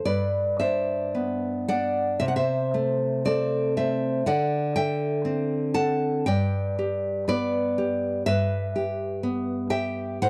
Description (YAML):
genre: romantic piece for solo classical guitar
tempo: 54-63 BPM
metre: 2/4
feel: rubato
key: G major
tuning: A4 = 441 Hz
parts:
  - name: nylon-string guitar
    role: solo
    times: 0.0-10.3 s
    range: G2 to A5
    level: -26 LUFS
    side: equal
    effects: none
room: little or no reverb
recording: dry, close 1970s-style studio recording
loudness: -26 LUFS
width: mono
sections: 0.1-10.3 A section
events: none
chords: 0.1 G; 2.2 Am/C; 4.3 D7; 6.3 G; 8.3 Em/G